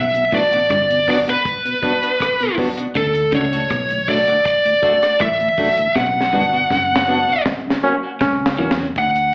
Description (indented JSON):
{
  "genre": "roots reggae",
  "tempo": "80 BPM",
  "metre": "4/4",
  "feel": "straight",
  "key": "B minor",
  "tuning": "A4 = 442 Hz",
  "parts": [
    { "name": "high-gain lead guitar", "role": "melody", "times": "0.0-9.3 s", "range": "A4 to F#5", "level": "-16 LUFS", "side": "equal", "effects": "distortion, slapback echo" },
    { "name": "clean electric guitar", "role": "riff", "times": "0.0-8.8 s", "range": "F#2 to E3", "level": "-24 LUFS", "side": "equal", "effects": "slapback echo" },
    { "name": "vintage muted fingered electric bass", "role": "bass", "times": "0.0-9.3 s", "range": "F#1 to E2", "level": "-28 LUFS", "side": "equal", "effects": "none" },
    { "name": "mellow tonewheel organ", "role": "accompaniment", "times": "0.1-8.9 s", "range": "D2 to D4", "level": "-24 LUFS", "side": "equal", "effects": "overdrive, chorus vibrato, slow rotary speaker, slapback echo" },
    { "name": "deep reggae drum kit", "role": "drums", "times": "0.1-9.3 s", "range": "hi-hat, kick drum, rim click, snare drum", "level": "-23 LUFS", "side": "equal", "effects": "slapback echo" },
    { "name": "clean electric guitar", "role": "accompaniment", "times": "0.3-8.9 s", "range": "A3 to F#4", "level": "-26 LUFS", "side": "equal", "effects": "wide subtle chorus, slapback echo" },
    { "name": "bright trombone", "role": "second line", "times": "7.8-8.8 s", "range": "C#4", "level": "-20 LUFS", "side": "equal", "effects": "slapback echo" }
  ],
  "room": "moderate club reverb, RT60 0.6 s",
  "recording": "live gig heard through the venue's PA, cassette tape, club reverb, AM radio sound",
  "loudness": "-14 LUFS",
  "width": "side -30 dB against mid",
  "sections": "0.0-9.0 A section",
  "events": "drum fill 6.0-9.0; band accent 6.0-9.0",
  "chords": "0.0 Bm; 3.0 D; 6.0 Bm; 7.5 F#"
}